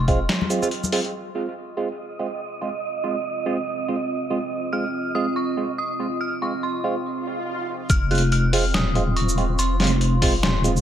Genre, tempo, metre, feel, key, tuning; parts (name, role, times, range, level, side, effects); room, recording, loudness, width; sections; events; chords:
deep dubstep; 142 BPM; 4/4; swing 58% on 16ths, half-time; F minor; A4 = 440 Hz
dark detuned synth bell; melody; 0.0-0.9, 4.7-10.8 s; C6 to Gb6; -29 LUFS; equal; chorus, dub echo
deep soft wobble bass; bass; 0.0-0.3, 7.9-10.8 s; Eb1 to F1; -21 LUFS; left 1 dB; chorus
barky tine electric piano; stabs; 0.1-10.7 s; Ab3 to F4; -27 LUFS; right 4 dB; phaser, low-pass filter, dub echo
electronic kick drum; drums; 0.1-0.2, 7.9-10.3 s; -20 LUFS; equal; overdrive
trip hop sampler-style drum kit; drums; 0.1-1.1, 7.9-10.8 s; hi-hat, shaker, snare drum; -25 LUFS; left 1 dB
congas; percussion; 0.4-0.9 s; -28 LUFS; left 3 dB
deep dark ambient pad; sustained chords; 3.1-10.8 s; C4 to F5; -30 LUFS; right 2 dB; chorus, built-in reverb
wind-like tuned noise texture; texture; 1.8-10.8 s; C4 to Eb5; -31 LUFS; right 4 dB; built-in reverb
swell; sound effects; 7.2-7.9 s; -32 LUFS; right 2 dB
light reverb; -21 LUFS; side -10 dB against mid
0.0-1.1 A section; 1.1-7.9 B section; 7.9-10.8 C section
break 0.7-1.1, 7.1-7.9; swell 7.2-7.9; drop 7.9-10.8
0.0 Fm